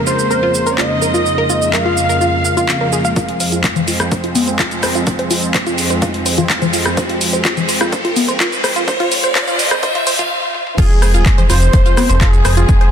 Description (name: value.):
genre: progressive house.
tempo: 126 BPM.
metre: 4/4.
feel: straight.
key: F minor.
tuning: A4 = 440 Hz.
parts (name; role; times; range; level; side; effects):
filtered supersaw swell; sustained chords; 0.0-12.9 s; F2 to C4; -21 LUFS; right 1 dB; sidechain pumping.
wide unison lead; melody; 0.1-3.1, 10.8-12.9 s; Ab4 to F5; -19 LUFS; equal; ping-pong delay.
dark studio violin section; second line; 0.1-3.1, 10.8-12.9 s; Ab4 to F5; -24 LUFS; equal; sidechain pumping, ping-pong delay.
wide unison pluck; arpeggios; 0.1-12.8 s; F4 to F5; -20 LUFS; equal; sidechain pumping, ping-pong delay.
house drum kit; drums; 0.1-12.9 s; cabasa, crash cymbal, handclaps, hi-hat, toms; -19 LUFS; equal; sidechain pumping on perc, high-pass filter on perc, studio reverb, high-pass filter on snare, sidechain pumping on hats, high-pass filter on hats, sidechain pumping on toms, high-pass filter on toms, sidechain pumping on cymbals, high-pass filter on cymbals.
electronic kick drum; drums; 3.2-12.8 s; none; -15 LUFS; equal; high-pass filter on kick, studio reverb.
riser; sound effects; 4.8-10.3 s; none; -23 LUFS; equal; none.
electronic congas and rim click; percussion; 3.8-12.5 s; none; -20 LUFS; left 4 dB; sidechain pumping on perc, studio reverb, soft clipping on snare, sidechain pumping on snare.
round analog bass; bass; 10.8-12.9 s; Eb1 to F1; -14 LUFS; equal; sidechain pumping.
room: light reverb, digital ambience.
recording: dense, heavily limited modern master, high-pass filter.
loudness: -12 LUFS.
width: side -8 dB against mid.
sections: 0.0-3.2 A section; 3.2-10.8 B section; 10.8-12.9 C section.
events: build-up 3.2-10.8; filter sweep on synth pluck 3.2-10.8; riser 4.8-10.3; stop 10.3-10.8; drum fill 10.5; drop 10.8-12.9.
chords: 0.0 Bbm7/F; 3.2 Fm.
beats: 0.31 0.78 | 1.26 1.74 2.21 2.69 | 3.16 3.64 4.12 4.59 | 5.07 5.54 6.02 6.50 | 6.97 7.45 7.92 8.40 | 8.88 9.35 9.83 10.31 | 10.78 11.26 11.73 12.21 | 12.69.